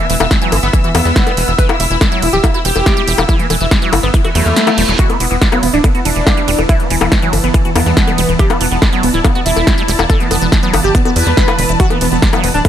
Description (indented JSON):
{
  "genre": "psychedelic trance",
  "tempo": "141 BPM",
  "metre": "4/4",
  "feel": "straight",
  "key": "E minor",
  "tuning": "A4 = 442 Hz",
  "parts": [
    { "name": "wide unison lead", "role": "melody", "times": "0.0-12.7 s", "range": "E3 to B4", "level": "-17 LUFS", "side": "equal", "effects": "phaser, vintage 12-bit sampler grit, sidechain pumping, ping-pong delay" },
    { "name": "liquid acid bass", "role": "riff", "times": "0.0-12.7 s", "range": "D3 to F#4", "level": "-21 LUFS", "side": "moving between left 3 dB and right 4 dB", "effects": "phaser, auto-pan, sidechain pumping, ping-pong delay" },
    { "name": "dark symphonic string section", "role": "texture", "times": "0.0-12.7 s", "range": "B3 to E6", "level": "-22 LUFS", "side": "left 1 dB", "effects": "sidechain pumping" },
    { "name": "tight sequencer bass", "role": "bass", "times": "0.1-12.6 s", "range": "D1 to E2", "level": "-16 LUFS", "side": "equal", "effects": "none" },
    { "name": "big-room dance drum kit", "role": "drums", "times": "0.1-12.7 s", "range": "bongos, hi-hat, ride cymbal, snare drum", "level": "-17 LUFS", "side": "left 2 dB", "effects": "overdrive" },
    { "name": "electronic kick drum", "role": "drums", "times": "0.3-12.7 s", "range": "none", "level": "-13 LUFS", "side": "equal", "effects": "none" },
    { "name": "reverse cymbal and zap", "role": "sound effects", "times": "4.3-5.0 s", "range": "none", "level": "-21 LUFS", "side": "right 3 dB", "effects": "none" },
    { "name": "evolving wavetable pad", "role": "sustained chords", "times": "5.7-12.7 s", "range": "E3", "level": "-23 LUFS", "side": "right 3 dB", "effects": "phaser, built-in reverb, vintage 12-bit sampler grit, sidechain pumping" }
  ],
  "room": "digital ambience",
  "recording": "none",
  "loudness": "-10 LUFS",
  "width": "side -10 dB against mid",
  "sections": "0.0-12.7 A section",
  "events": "reverse cymbal 4.3-5.0; kick drops out 4.6-5.0",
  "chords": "0.0 E5"
}